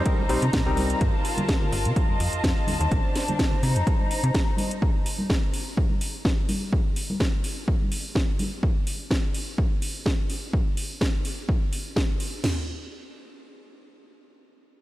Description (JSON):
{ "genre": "filtered disco house", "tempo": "126 BPM", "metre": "4/4", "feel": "swing 54% on 16ths", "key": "C dorian", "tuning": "A4 = 438 Hz", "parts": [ { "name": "mellow clav", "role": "accompaniment", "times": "0.0-1.0 s", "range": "G3 to C5", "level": "-31 LUFS", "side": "left 1 dB", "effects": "phaser, sidechain pumping, low-pass filter" }, { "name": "rich chamber violin section", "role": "sustained chords", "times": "0.0-4.8 s", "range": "D4 to Bb5", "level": "-30 LUFS", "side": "left 1 dB", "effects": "sidechain pumping, low-pass filter" }, { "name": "slap-like FM bass", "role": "bass", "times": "0.0-4.3 s", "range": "G1 to C3", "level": "-25 LUFS", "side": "equal", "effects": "sidechain pumping, low-pass filter" }, { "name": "house drum kit", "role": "drums", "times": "0.1-12.6 s", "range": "crash cymbal, kick drum, snare drum, toms", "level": "-24 LUFS", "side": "equal", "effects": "overdrive" }, { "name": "house drum kit", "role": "drums", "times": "0.1-12.3 s", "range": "hi-hat, snare drum", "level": "-31 LUFS", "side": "equal", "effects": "overdrive, sidechain pumping on hats, sidechain pumping on cymbals, sidechain pumping on perc" }, { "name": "egg shaker and congas", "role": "percussion", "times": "0.1-8.6 s", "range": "none", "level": "-33 LUFS", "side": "equal", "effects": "sidechain pumping on perc, low-pass filter on perc" } ], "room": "light reverb, digital ambience", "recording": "none", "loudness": "-22 LUFS", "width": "side -16 dB against mid", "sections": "0.0-12.4 A section; 12.4-14.8 B section", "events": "none", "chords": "0.0 Cm7; 1.0 Gm9; 2.0 F7; 2.9 Bbmaj9 (rootless); 3.6 Cm7; 4.8 N.C." }